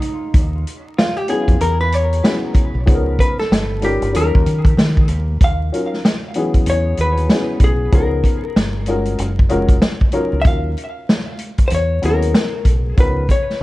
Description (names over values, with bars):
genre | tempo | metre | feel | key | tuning
hip hop, jazz-hop | 95 BPM | 4/4 | swing 60% on 16ths | unclear | A4 = 439 Hz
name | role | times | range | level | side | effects
vintage hollow-body jazz guitar | melody | 0.0-13.6 s | Eb4 to F5 | -22 LUFS | left 2 dB | tape echo
vintage drum kit | drums | 0.0-13.6 s | hi-hat, kick drum, snare drum | -15 LUFS | equal | none
deep dub fingered electric bass | bass | 0.3-13.6 s | F1 to Eb3 | -19 LUFS | equal | none
dark upright piano | accompaniment | 1.3-13.2 s | Fb3 to Bb4 | -22 LUFS | left 2 dB | none
room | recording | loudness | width
small room ambience | vinyl crackle | -14 LUFS | side -18 dB against mid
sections
0.0-5.4 A section; 5.4-13.6 B section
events
hollow-body jazz guitar solo 0.0-5.4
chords
0.4 Ebm9; 1.6 E69; 2.9 Db13; 3.5 Gsus2; 4.1 Ebm9; 6.7 E69; 7.9 Db13; 8.6 Gm7b5; 9.2 Gbmaj9; 10.5 Ebm9; 11.7 E69; 13.0 Db13